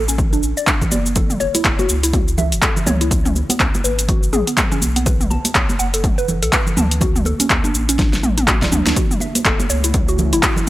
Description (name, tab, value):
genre	afro house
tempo	123 BPM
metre	4/4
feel	swing 59% on 16ths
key	F# minor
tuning	A4 = 440 Hz
part	warm sub bass	bass	0.0-10.4 s	D1 to D2	-21 LUFS	equal	transformer saturation, sidechain pumping
part	mallet-like synth pluck	arpeggios	0.1-10.5 s	A3 to A5	-23 LUFS	equal	chorus, phaser, sidechain pumping, analog delay
part	deep house drum kit	drums	0.1-10.7 s	handclaps, hi-hat, shaker, snare drum, toms	-18 LUFS	equal	overdrive
part	electronic kick drum	drums	0.2-10.5 s	none	-19 LUFS	equal	overdrive
part	congas	percussion	0.2-10.6 s	none	-24 LUFS	right 2 dB	none
part	ethereal airy pad	sustained chords	9.6-10.7 s	C#3 to E4	-27 LUFS	left 1 dB	ensemble chorus, built-in reverb, vintage 12-bit sampler grit, sidechain pumping
room	light reverb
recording	dry, gritty hardware recording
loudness	-14 LUFS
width	side -16 dB against mid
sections	0.0-10.7 A section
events	drum fill 8.0-9.0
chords	0.0 D; 1.2 F#m7; 3.1 C#5; 5.1 Bm7; 7.0 D; 9.0 F#m7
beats	0.18 0.67 | 1.16 1.65 2.13 2.62 | 3.11 3.60 4.09 4.57 | 5.06 5.55 6.04 6.53 | 7.01 7.50 7.99 8.48 | 8.96 9.45 9.94 10.43